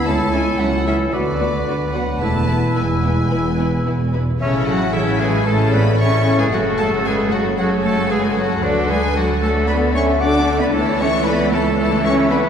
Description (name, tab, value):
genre	quick classical-period movement for symphony orchestra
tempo	114 BPM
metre	4/4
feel	straight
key	A major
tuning	A4 = 438 Hz
part	rich chamber violin section	melody	0.0-12.4 s	C#5 to D6	-27 LUFS	left 4 dB	none
part	bright oboe	second line	0.0-12.5 s	C#4 to D5	-26 LUFS	right 1 dB	none
part	mellow concert flute	second line	0.0-12.4 s	E4 to E6	-26 LUFS	left 1 dB	none
part	warm clarinet	second line	0.0-12.5 s	E4 to E5	-26 LUFS	left 1 dB	none
part	dark bassoon	accompaniment	0.0-4.1 s	B3 to C#4	-27 LUFS	left 1 dB	none
part	mellow French horn section	sustained chords	0.0-12.5 s	C#3 to D4	-26 LUFS	left 2 dB	none
part	rich chamber violin section	second line	0.1-12.5 s	E4 to E5	-28 LUFS	left 2 dB	none
part	rich symphonic viola section	accompaniment	0.1-12.5 s	C#3 to F#4	-23 LUFS	left 1 dB	none
part	warm chamber cello section	bass	0.1-12.5 s	C#2 to D4	-23 LUFS	right 1 dB	none
part	warm chamber double bass section	bass	0.1-12.5 s	E1 to D2	-21 LUFS	right 2 dB	none
room	wet concert hall reverb, RT60 2.4 s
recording	heard from further back in the room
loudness	-15 LUFS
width	side -8 dB against mid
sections	0.0-4.4 A section; 4.4-12.5 B section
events	none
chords	0.1 A/C#; 1.1 Bm/D; 2.2 E; 4.4 A; 6.5 F#m; 8.6 D; 10.7 A/C#